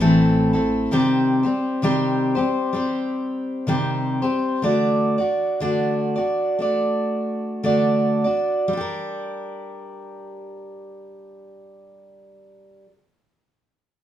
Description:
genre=acoustic folk duo or small band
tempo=54-66 BPM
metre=4/4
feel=swing 57% on 8ths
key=G harmonic minor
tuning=A4 = 440 Hz
part: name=picked steel-string acoustic guitar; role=accompaniment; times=0.0-13.0 s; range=A2 to D5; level=-19 LUFS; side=equal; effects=none
part: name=upright bass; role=bass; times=0.0-0.9 s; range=A1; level=-34 LUFS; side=equal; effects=none
room=wet studio reverb, RT60 0.5 s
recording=minimal, uncompressed stereo recording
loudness=-19 LUFS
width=side -11 dB against mid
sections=0.0-8.7 A section; 8.7-13.1 B section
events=slowing down 0.9-8.7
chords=0.0 Am; 0.9 Cm; 4.6 D; 8.7 Gm

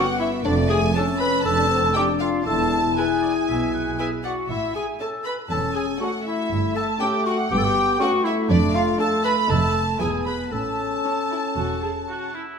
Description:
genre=cinematic, playful, whimsical film cue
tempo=119 BPM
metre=4/4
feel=straight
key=A major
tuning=A4 = 439 Hz
part: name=dark studio violin section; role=melody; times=0.0-12.3 s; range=D5 to B5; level=-30 LUFS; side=left 2 dB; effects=none
part: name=clear studio violin section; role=second line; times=0.0-12.3 s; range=D5 to B5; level=-32 LUFS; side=left 2 dB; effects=none
part: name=flute section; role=second line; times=0.0-12.3 s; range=D5 to B5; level=-29 LUFS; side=right 3 dB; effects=none
part: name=warm clarinet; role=second line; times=0.0-12.3 s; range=D4 to B4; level=-25 LUFS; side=left 1 dB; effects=none
part: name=rich studio viola section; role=accompaniment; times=0.0-12.4 s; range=C#4 to B4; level=-34 LUFS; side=right 1 dB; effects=none
part: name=warm French horn section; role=sustained chords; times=0.0-12.3 s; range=A3 to E4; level=-26 LUFS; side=left 3 dB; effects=none
part: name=dark studio cello section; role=bass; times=0.4-12.0 s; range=E2 to B2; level=-28 LUFS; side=right 3 dB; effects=none
part: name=dark studio double bass section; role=bass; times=0.5-12.0 s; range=E1 to B1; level=-28 LUFS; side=right 4 dB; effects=none
part: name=clear oboe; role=second line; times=3.0-4.4, 12.1-12.6 s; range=E4 to F#5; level=-33 LUFS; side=right 2 dB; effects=none
room=wet recital hall reverb, RT60 1.8 s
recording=none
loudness=-20 LUFS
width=side -6 dB against mid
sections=0.0-12.6 A section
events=none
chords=0.4 Dm/F; 1.4 F; 2.5 E; 4.5 A; 6.5 A7/G; 8.5 Dm/F; 9.5 F7; 10.0 E; 10.5 A

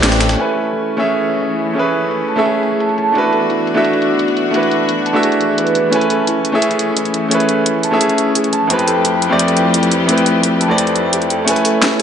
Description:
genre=liquid drum and bass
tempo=173 BPM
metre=4/4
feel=straight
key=A major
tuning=A4 = 440 Hz
part: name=clear baby grand piano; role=accompaniment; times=0.0-12.0 s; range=F2 to G#5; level=-15 LUFS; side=equal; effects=tape echo
part: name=dark studio string section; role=sustained chords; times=0.0-12.0 s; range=E3 to C#5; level=-20 LUFS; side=left 2 dB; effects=none
part: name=concert harp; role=arpeggios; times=0.0-12.0 s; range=E4 to A5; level=-21 LUFS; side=right 3 dB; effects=low-pass filter, ping-pong delay
part: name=drum and bass drum kit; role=drums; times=0.0-12.0 s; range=crash cymbal, hi-hat, ride cymbal, rim click, snare drum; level=-19 LUFS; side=equal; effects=overdrive, low-pass filter on hats, low-pass filter on cymbals, low-pass filter on snare, low-pass filter on room
part: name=dusty soul sampler-style drum kit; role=drums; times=0.0-0.4, 11.5-12.0 s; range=hi-hat, snare drum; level=-21 LUFS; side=equal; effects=high-pass filter on hats, high-pass filter on snare, high-pass filter on room
room=moderate lush hall reverb, RT60 1.6 s, digital ambience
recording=nothing above 10.4 kHz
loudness=-13 LUFS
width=side -8 dB against mid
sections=0.4-11.5 A section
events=band accent 0.0; filter sweep on drum 0.4-11.5; filter sweep on harp 0.4-11.5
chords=0.4 Amaj7; 3.2 D69; 5.9 Amaj7; 8.7 Fmaj9#11; 11.5 Amaj7

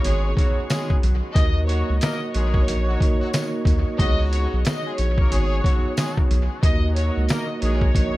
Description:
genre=hip hop, boom-bap hip-hop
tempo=91 BPM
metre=4/4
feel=swing 62% on 16ths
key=Eb minor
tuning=A4 = 440 Hz
part: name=warm studio violin section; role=melody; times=0.0-8.2 s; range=Db5 to Eb5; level=-30 LUFS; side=left 1 dB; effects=high-pass filter, low-pass filter, dub echo
part: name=vibraphone with soft mallets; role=accompaniment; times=0.0-8.2 s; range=Bb3 to Eb5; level=-28 LUFS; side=right 2 dB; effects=cassette tape, high-pass filter, low-pass filter, dub echo
part: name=overdriven tonewheel organ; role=sustained chords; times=0.0-8.2 s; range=Bb2 to Gb4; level=-39 LUFS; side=equal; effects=none
part: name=clear trumpet section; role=stabs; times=0.0-7.9 s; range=Gb3 to Bb4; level=-34 LUFS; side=left 3 dB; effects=high-pass filter, low-pass filter, dub echo
part: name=soft dub sub bass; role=bass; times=0.0-8.2 s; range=Ab1 to Eb2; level=-21 LUFS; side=equal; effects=none
part: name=trip hop sampler-style drum kit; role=drums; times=0.0-8.1 s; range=hi-hat, kick drum, snare drum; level=-21 LUFS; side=equal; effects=none
part: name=tambourine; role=percussion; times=0.7-7.5 s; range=none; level=-41 LUFS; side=left 5 dB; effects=dub echo
room=studio reverb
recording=echo-heavy mix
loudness=-18 LUFS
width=side -18 dB against mid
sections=0.0-8.2 A section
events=none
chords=0.0 Db7sus4; 1.4 Ebm; 4.0 Db7sus4; 6.6 Ebm

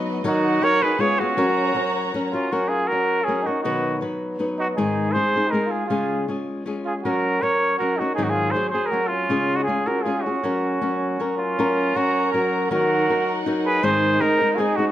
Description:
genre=mexican folk, mariachi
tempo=159 BPM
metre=3/4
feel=swing 53% on 8ths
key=F# major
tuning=A4 = 440 Hz
part: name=flamenco guitar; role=accompaniment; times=0.0-14.9 s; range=G#2 to B4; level=-24 LUFS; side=left 2 dB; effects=none
part: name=dark studio violin section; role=sustained chords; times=0.0-2.5, 11.6-14.9 s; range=G#3 to A#5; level=-28 LUFS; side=equal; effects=none
part: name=warm trumpet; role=melody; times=0.3-14.9 s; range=E#4 to C#5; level=-22 LUFS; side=equal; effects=none
part: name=mellow trumpet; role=second line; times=0.3-14.9 s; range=C#4 to A#4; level=-28 LUFS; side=right 5 dB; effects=none
room=moderate recital hall reverb, RT60 1.4 s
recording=close, detailed microphones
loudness=-19 LUFS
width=side -12 dB against mid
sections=0.0-2.5 A section; 2.5-11.6 B section; 11.6-14.9 B section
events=none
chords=0.2 D#m; 1.0 C#7; 1.4 F#; 3.7 B; 4.8 G#; 5.9 C#; 7.0 F#; 8.2 G#7; 9.3 C#; 10.4 F#; 12.7 D#m; 13.8 G#

